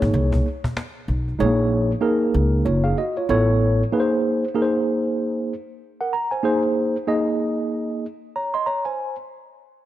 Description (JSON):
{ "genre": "hip hop, jazz-hop", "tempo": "95 BPM", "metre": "4/4", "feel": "swing 59% on 16ths", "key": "Bb minor", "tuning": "A4 = 441 Hz", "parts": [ { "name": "mellow tine electric piano", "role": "accompaniment", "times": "0.0-9.2 s", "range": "Ab3 to C6", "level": "-20 LUFS", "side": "right 1 dB", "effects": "medium stereo tremolo" }, { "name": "upright bass", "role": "bass", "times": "0.0-3.8 s", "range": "Gb1 to Db2", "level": "-20 LUFS", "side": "equal", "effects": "none" }, { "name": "cajon", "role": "drums", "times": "0.0-1.3 s", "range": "none", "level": "-27 LUFS", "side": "equal", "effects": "none" } ], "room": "moderate echo chamber reverb, RT60 2.1 s", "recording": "none", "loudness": "-19 LUFS", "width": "side -13 dB against mid", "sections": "0.0-9.0 A section", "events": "none", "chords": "0.0 Bbm9; 1.4 Gbadd9/Bb; 3.3 Aadd9; 3.9 Bb9sus4", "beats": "0.14 0.77 | 1.40 2.03 2.66 3.29 | 3.93 4.56 5.19 5.82 | 6.45 7.08 7.72 8.35" }